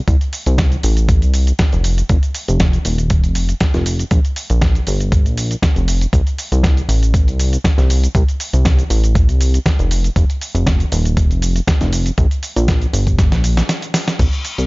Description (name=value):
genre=nu-disco, nu disco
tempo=119 BPM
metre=4/4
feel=swing 53% on 16ths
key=unclear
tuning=A4 = 440 Hz
part: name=chorused synth bass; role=bass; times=0.1-14.7 s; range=Eb1 to C2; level=-15 LUFS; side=equal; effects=none
part: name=dusty soul sampler-style drum kit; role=drums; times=0.1-14.7 s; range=crash cymbal, hi-hat, shaker, snare drum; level=-22 LUFS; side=equal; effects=none
part: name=electronic kick drum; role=drums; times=0.1-14.3 s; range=none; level=-15 LUFS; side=equal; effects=none
room=little or no reverb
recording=echo-heavy mix, nothing above 7.5 kHz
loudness=-13 LUFS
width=side -25 dB against mid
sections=0.0-14.2 A section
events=drop 0.0-14.2; drum fill 13.2-14.2; break 13.7-14.2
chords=none